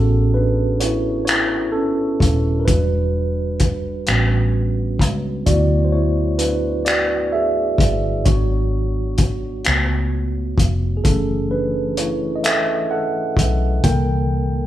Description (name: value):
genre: slow six-eight R&B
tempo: 43 BPM (dotted quarters)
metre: 6/8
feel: straight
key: A major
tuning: A4 = 443 Hz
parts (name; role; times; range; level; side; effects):
- mellow tine electric piano; accompaniment; 0.0-14.7 s; D3 to G5; -21 LUFS; right 1 dB; fast stereo tremolo
- vintage muted fingered electric bass; bass; 0.0-14.7 s; D#1 to D2; -20 LUFS; equal; none
- cloth-damped thuddy drum kit; drums; 0.8-14.1 s; finger snaps, hi-hat, kick drum; -19 LUFS; left 1 dB; none
room: moderate large studio reverb, RT60 1.1 s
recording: band playing live in one room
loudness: -16 LUFS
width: side -13 dB against mid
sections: 0.0-14.7 A section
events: tine electric piano solo 0.0-14.7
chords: 0.0 Amaj13; 2.7 Em9; 4.1 A13; 5.5 D69; 8.3 G#m7b5; 9.7 C#aug7; 11.0 F#m7; 13.8 C13